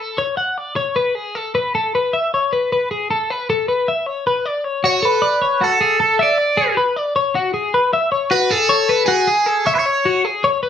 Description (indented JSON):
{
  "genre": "rock",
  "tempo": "311 BPM (eighths)",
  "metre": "9/8",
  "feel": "straight",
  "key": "unclear",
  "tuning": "A4 = 440 Hz",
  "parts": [
    { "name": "twelve-string electric guitar", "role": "arpeggios", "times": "0.0-10.7 s", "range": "F#4 to F#5", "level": "-17 LUFS", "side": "left 3 dB", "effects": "vibrato effect" },
    { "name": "crunchy overdriven guitar", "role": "melody", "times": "4.9-10.2 s", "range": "G#4 to D5", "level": "-16 LUFS", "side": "right 3 dB", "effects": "phaser, slapback echo" }
  ],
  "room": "moderate studio ambience, RT60 0.5 s",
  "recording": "small room ambience",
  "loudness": "-15 LUFS",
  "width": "side -8 dB against mid",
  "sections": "0.0-4.5 A section; 4.5-10.7 B section",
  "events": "none",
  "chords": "0.0 Dmaj7; 1.0 Esus4 (rootless); 4.5 Dmaj7; 6.2 E7; 7.9 Amaj7 (rootless)",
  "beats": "0.18 0.38 0.57 0.77 | 0.96 1.16 1.35 1.54 1.74 1.93 2.13 2.32 2.52 | 2.71 2.91 3.10 3.29 3.49 3.68 3.88 4.07 4.26 | 4.46 4.65 4.84 5.04 5.23 5.42 5.62 5.81 6.00 | 6.20 6.39 6.58 6.77 6.97 7.16 7.35 7.54 7.74 | 7.93 8.12 8.32 8.51 8.70 8.89 9.09 9.28 9.47 | 9.67 9.86 10.05 10.24 10.44 10.63"
}